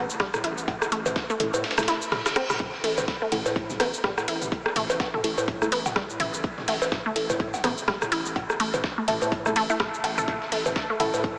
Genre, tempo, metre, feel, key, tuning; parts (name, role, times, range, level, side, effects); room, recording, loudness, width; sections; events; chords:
minimal techno; 125 BPM; 4/4; swing 58% on 16ths; A4 = 441 Hz
saturated sub bass; bass; 0.0-11.4 s; A1 to A2; -39 LUFS; equal; sidechain pumping
booming analog drum machine; drums; 0.1-11.2 s; hi-hat, ride cymbal, rim click, shaker; -34 LUFS; equal
resonant blip pluck; riff; 0.2-10.9 s; G3 to A4; -31 LUFS; equal; phaser, sidechain pumping, diffuse ambient delay
dusty soul sampler-style drum kit; drums; 0.2-11.4 s; hi-hat, snare drum; -38 LUFS; equal; high-pass filter on snare, sidechain pumping on hats, high-pass filter on hats
electronic kick drum; drums; 0.2-11.4 s; -33 LUFS; equal
organic electronic drum kit; percussion; 0.3-11.2 s; cowbell, rim click, toms; -32 LUFS; equal; tape echo
filtered dub chord stab; stabs; 1.4-11.1 s; A3 to A4; -34 LUFS; equal; chorus, tape echo
reverse cymbal; sound effects; 2.0-2.6 s; -40 LUFS; equal
wet huge ambient reverb, RT60 7.3 s; dreamy mix soaked in reverb, small speaker sound; -26 LUFS; mono
0.0-11.4 A section
reverse cymbal 2.0-2.6; drum fill 2.1-2.6
0.0 A5